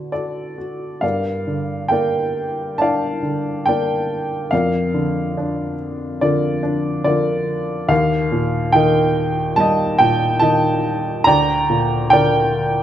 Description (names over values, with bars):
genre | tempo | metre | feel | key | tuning
classical, lyrical solo piano | 70 BPM | 4/4 | rubato | G minor | A4 = 440 Hz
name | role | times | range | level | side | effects
warm upright piano | solo | 0.0-12.8 s | D2 to Bb5 | -16 LUFS | equal | none
room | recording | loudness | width
wet recital hall reverb, RT60 1.9 s | none | -16 LUFS | side -11 dB against mid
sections
0.0-1.0 A section; 1.0-12.8 B section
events
none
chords
0.0 D; 1.0 Gm7; 4.5 Bb/F; 7.9 Eb; 11.3 Gm/D